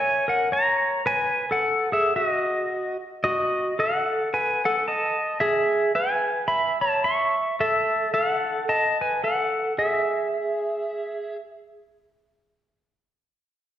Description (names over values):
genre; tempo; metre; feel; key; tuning
hawaiian; 110 BPM; 4/4; swing 58% on 8ths; unclear; A4 = 440 Hz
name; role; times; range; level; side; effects
pedal steel guitar; solo; 0.0-11.4 s; F#4 to C#6; -21 LUFS; equal; none
room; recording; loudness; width
wet recital hall reverb, RT60 1.6 s; recorded in a church or concert hall; -21 LUFS; side -11 dB against mid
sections
0.0-11.9 A section; 11.9-13.8 B section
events
none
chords
0.0 F#add9; 1.0 B7; 5.4 C#m7; 7.6 N.C.; 8.7 B7; 9.8 N.C.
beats
0.49 | 1.03 1.58 2.13 2.67 | 3.22 3.76 4.31 4.85 | 5.40 5.94 6.49 7.03 | 7.58 8.12 8.67 9.21 | 9.76 10.30 10.84